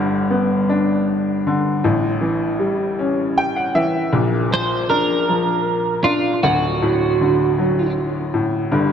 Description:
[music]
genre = pop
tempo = 52 BPM (dotted quarters)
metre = 6/8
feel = straight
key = D major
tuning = A4 = 440 Hz
[part]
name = clear upright piano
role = accompaniment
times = 0.0-8.9 s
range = D1 to G5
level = -18 LUFS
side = left 1 dB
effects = none
[part]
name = twelve-string electric guitar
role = melody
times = 4.5-7.9 s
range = F4 to C5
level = -19 LUFS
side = right 3 dB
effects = lush chorus, analog delay
[sound]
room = wet plate reverb, RT60 2.9 s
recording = dreamy mix soaked in reverb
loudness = -16 LUFS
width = side -8 dB against mid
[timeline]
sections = 0.0-8.9 A section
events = upright piano fill 3.0-4.1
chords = 0.0 G; 1.8 A7; 4.1 Bb; 6.4 D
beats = 0.69 | 1.84 2.98 | 4.13 5.28 | 6.42 7.57 | 8.72

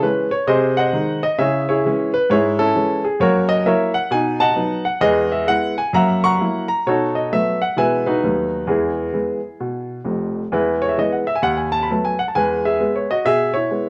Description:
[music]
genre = jazz, stride piano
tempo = 132 BPM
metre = 4/4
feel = swing 63% on 8ths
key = E major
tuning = A4 = 439 Hz
[part]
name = clear grand piano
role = solo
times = 0.0-13.9 s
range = F1 to C#6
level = -19 LUFS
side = equal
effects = none
[sound]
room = moderate club reverb, RT60 0.9 s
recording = heard from further back in the room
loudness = -19 LUFS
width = mono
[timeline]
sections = 0.0-10.5 A section; 10.5-13.9 A section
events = none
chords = 0.5 G#7/B#; 1.4 C#m; 3.2 F#7; 4.1 B7; 5.0 E; 6.0 F#7; 6.9 B7; 7.8 E/B; 8.2 B7/D#; 8.7 E; 11.4 B7/D#; 12.3 E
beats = 0.02 0.48 0.93 | 1.39 1.85 2.30 2.76 | 3.21 3.67 4.13 4.58 | 5.04 5.50 5.95 6.41 | 6.86 7.32 7.78 8.23 | 8.69 9.14 9.60 10.06 | 10.51 10.97 11.43 11.88 | 12.34 12.79 13.25 13.71

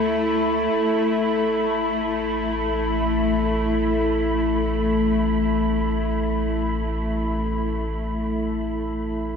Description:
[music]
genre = ambient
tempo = free time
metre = none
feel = none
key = unclear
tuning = A4 = 440 Hz
[part]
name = round analog bass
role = bass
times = 0.0-9.4 s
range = A1 to D2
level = -28 LUFS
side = equal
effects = none
[part]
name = bowed-like drone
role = drone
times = 0.0-9.4 s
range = A3 to E4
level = -22 LUFS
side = left 1 dB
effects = built-in reverb
[part]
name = wind-like tuned noise texture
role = texture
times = 0.0-9.4 s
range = B5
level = -30 LUFS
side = equal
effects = built-in reverb
[sound]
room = wet cathedral reverb, RT60 6.1 s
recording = in a vast, echoing space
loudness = -20 LUFS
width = side -6 dB against mid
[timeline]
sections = 0.0-9.4 A section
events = fade-out on analog synth bass 0.0-9.4; fade-out on synth texture 0.0-9.4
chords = 0.0 Dsus2; 0.7 Asus2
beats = free time

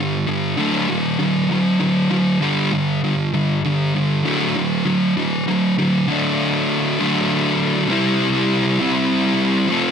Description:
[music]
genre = rock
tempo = 66 BPM (dotted quarters)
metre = 6/8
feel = straight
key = unclear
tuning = A4 = 440 Hz
[part]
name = thick fuzz guitar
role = solo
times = 0.0-9.9 s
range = G2 to A4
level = -16 LUFS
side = equal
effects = distortion
[sound]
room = moderate studio ambience, RT60 0.5 s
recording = none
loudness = -16 LUFS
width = side -7 dB against mid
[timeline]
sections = 0.0-6.1 A section; 6.1-9.7 B section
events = none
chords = 0.0 G5; 0.6 D; 2.4 G5; 4.3 D; 7.9 C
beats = | 0.59 1.51 | 2.42 3.34 | 4.25 5.17 | 6.08 6.99 | 7.90 8.81 | 9.71

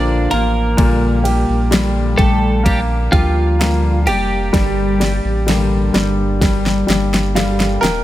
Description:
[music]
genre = pop ballad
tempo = 64 BPM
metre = 4/4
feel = straight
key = G minor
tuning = A4 = 440 Hz
[part]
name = twelve-string electric guitar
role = melody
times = 0.0-7.3 s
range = F3 to D5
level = -20 LUFS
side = equal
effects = none
[part]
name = clear concert grand piano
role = accompaniment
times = 0.0-8.0 s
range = Bb2 to G5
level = -20 LUFS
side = equal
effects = none
[part]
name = fingerpicked steel-string acoustic guitar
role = arpeggios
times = 0.0-8.0 s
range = G2 to G4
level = -22 LUFS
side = left 4 dB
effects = none
[part]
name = warm sub bass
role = bass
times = 0.0-8.0 s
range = Eb1 to D2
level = -18 LUFS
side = equal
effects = none
[part]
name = pop drum kit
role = drums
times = 0.3-8.0 s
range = kick drum, ride cymbal, snare drum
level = -18 LUFS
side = equal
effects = none
[sound]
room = little or no reverb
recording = none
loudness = -13 LUFS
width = side -14 dB against mid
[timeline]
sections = 0.0-8.0 A section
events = drum fill 4.5-8.0; grand piano fill 6.9-8.0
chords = 0.0 Bb6; 0.8 Gm/Bb; 4.5 Gm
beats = | 0.79 1.73 2.67 3.60 | 4.54 5.48 6.42 7.35

